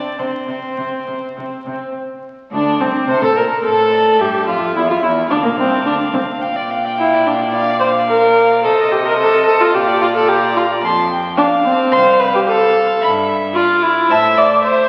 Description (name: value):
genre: quick classical-period movement for string quartet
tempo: 108 BPM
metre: 4/4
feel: rubato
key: unclear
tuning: A4 = 440 Hz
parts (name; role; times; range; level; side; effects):
- rich violin; melody; 0.0-14.9 s; A4 to Bb5; -24 LUFS; equal; none
- warm violin; second line; 0.0-14.4 s; Bb3 to C6; -24 LUFS; equal; none
- rich viola; accompaniment; 0.0-14.9 s; Bb3 to E5; -17 LUFS; equal; none
- rich cello; bass; 0.2-14.6 s; C2 to C3; -27 LUFS; equal; none
room: wet concert hall reverb, RT60 2.0 s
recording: very old 78 rpm record, vinyl crackle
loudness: -15 LUFS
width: mono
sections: 0.0-2.0 A section; 2.0-14.9 B section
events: none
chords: 0.0 Csus2; 2.0 Bbmaj9 (rootless); 4.2 Em; 5.3 F5; 6.4 Bb; 8.6 Cm6; 9.7 Bb; 10.8 F; 13.0 G; 14.1 Am